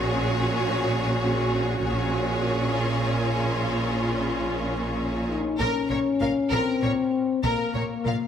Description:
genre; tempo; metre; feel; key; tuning
cinematic; 65 BPM (dotted quarters); 6/8; straight; Bb minor; A4 = 439 Hz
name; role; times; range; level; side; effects
bright symphonic violin section; second line; 0.0-8.2 s; Ab4 to F5; -31 LUFS; left 1 dB; none
warm symphonic viola section; accompaniment; 0.0-8.1 s; Db4 to Bb4; -29 LUFS; equal; none
clear chamber double bass section; bass; 0.0-8.1 s; Bb1; -30 LUFS; right 3 dB; none
clear symphonic cello section; bass; 0.0-8.1 s; Bb2; -30 LUFS; right 1 dB; none
mellow French horn section; sustained chords; 5.3-8.3 s; Bb3 to Eb4; -25 LUFS; left 6 dB; none
clear symphonic violin section; melody; 5.6-8.1 s; Bb4 to F5; -31 LUFS; left 2 dB; none
room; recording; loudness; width
moderate scoring stage reverb, RT60 1.6 s; none; -22 LUFS; side -8 dB against mid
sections
0.0-5.6 A section; 5.6-8.3 B section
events
build-up 0.0-5.6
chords
0.0 Gbadd9/Bb; 1.9 Db/Bb; 5.6 Bbm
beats
| 0.01 0.93 | 1.85 2.78 | 3.72 4.66 | 5.60 6.52 | 7.45

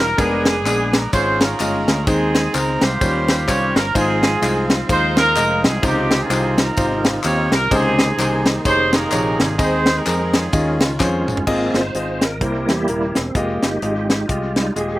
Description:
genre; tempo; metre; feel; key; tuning
uptempo gospel; 128 BPM; 4/4; swing 59% on 8ths; Ab major; A4 = 440 Hz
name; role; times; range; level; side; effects
clear horn section; melody; 0.0-11.2 s; Cb4 to Db5; -20 LUFS; right 2 dB; none
clear concert grand piano; accompaniment; 0.0-15.0 s; Ab2 to Ab5; -21 LUFS; left 1 dB; slapback echo
fingered electric bass; bass; 0.0-15.0 s; Eb1 to F2; -24 LUFS; equal; none
tambourine and handclaps; percussion; 0.0-11.4 s; none; -29 LUFS; left 5 dB; none
tight funk drum kit; drums; 0.2-14.9 s; crash cymbal, hi-hat, kick drum, ride cymbal, snare drum, toms; -20 LUFS; equal; none
bright tonewheel organ; sustained chords; 4.0-15.0 s; Eb3 to C5; -25 LUFS; right 2 dB; slow rotary speaker, chorus vibrato
room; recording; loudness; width
little or no reverb; recorded outdoors, with no room sound; -15 LUFS; side -17 dB against mid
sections
0.0-11.5 A section; 11.5-15.0 B section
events
grand piano fill 10.8-11.5; drum fill 11.0-11.5; tonewheel organ solo 11.5-15.0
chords
0.2 Bb7b9/F; 1.1 Db/Ab; 2.1 Ab/Eb; 3.0 Eb13; 4.0 Ab6; 5.8 Dbmaj9; 7.7 Bbm11; 9.6 Ab/Eb; 10.5 Eb9sus4; 11.5 Ab6; 12.4 C7; 13.4 Fm9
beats
| 0.19 0.66 1.13 1.60 | 2.07 2.54 3.01 3.48 | 3.95 4.42 4.89 5.36 | 5.83 6.30 6.77 7.24 | 7.71 8.18 8.65 9.12 | 9.59 10.06 10.53 11.00 | 11.47 11.94 12.41 12.88 | 13.35 13.82 14.29 14.76

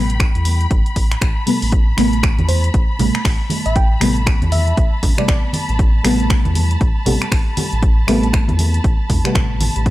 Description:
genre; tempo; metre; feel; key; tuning
deep house; 118 BPM; 4/4; swing 61% on 16ths; A minor; A4 = 440 Hz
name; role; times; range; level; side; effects
deep mellow chord stab; stabs; 0.0-9.9 s; C3 to B3; -20 LUFS; equal; chorus, sidechain pumping, analog delay
sub bass with octave; bass; 0.0-9.9 s; G1 to E2; -18 LUFS; equal; tube saturation, sidechain pumping
warm symphonic string section; texture; 0.0-9.9 s; G5 to B5; -27 LUFS; left 1 dB; sidechain pumping
punchy analog drum machine; drums; 0.1-9.9 s; finger snaps, hi-hat; -24 LUFS; equal; none
electronic kick drum; drums; 0.2-9.9 s; none; -16 LUFS; equal; none
congas; percussion; 2.4-9.7 s; none; -25 LUFS; right 1 dB; none
bell-like FM electric piano; melody; 2.5-5.4 s; C5 to G5; -25 LUFS; right 2 dB; chorus, analog delay
room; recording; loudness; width
digital ambience; dry, gritty hardware recording; -14 LUFS; side -16 dB against mid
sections
0.0-9.9 A section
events
filter sweep on synth stab 0.0-9.9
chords
0.0 Am9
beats
0.20 0.71 1.22 | 1.72 2.23 2.74 3.25 | 3.76 4.27 4.78 5.28 | 5.79 6.30 6.81 7.32 | 7.83 8.33 8.84 9.35 | 9.86

